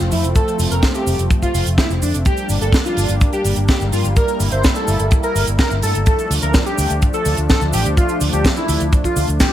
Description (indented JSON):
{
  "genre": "italo disco",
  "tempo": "126 BPM",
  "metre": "4/4",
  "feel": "straight",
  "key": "D minor",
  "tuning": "A4 = 440 Hz",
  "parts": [
    { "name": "wide unison lead", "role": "melody", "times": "0.0-9.5 s", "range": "D4 to C5", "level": "-21 LUFS", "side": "equal", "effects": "ping-pong delay" },
    { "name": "warm analog pad", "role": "sustained chords", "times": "0.0-9.5 s", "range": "F3 to E4", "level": "-24 LUFS", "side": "equal", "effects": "chorus" },
    { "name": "fingered electric bass with an envelope filter", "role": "bass", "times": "0.0-9.4 s", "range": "F1 to G2", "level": "-19 LUFS", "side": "equal", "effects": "none" },
    { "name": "tight funk drum kit", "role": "drums", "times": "0.0-9.5 s", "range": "cabasa, handclaps, hi-hat, snare drum", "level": "-21 LUFS", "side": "right 1 dB", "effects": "small room ambience, gated reverb" },
    { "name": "kick drum", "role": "drums", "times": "0.4-9.5 s", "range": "none", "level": "-16 LUFS", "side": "equal", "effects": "small room ambience" }
  ],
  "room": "light reverb",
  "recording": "bright 1980s-style digital production, vinyl crackle",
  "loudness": "-14 LUFS",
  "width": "side -12 dB against mid",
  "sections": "0.0-9.5 A section",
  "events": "none",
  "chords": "0.0 F; 2.3 Gm; 6.1 Dm"
}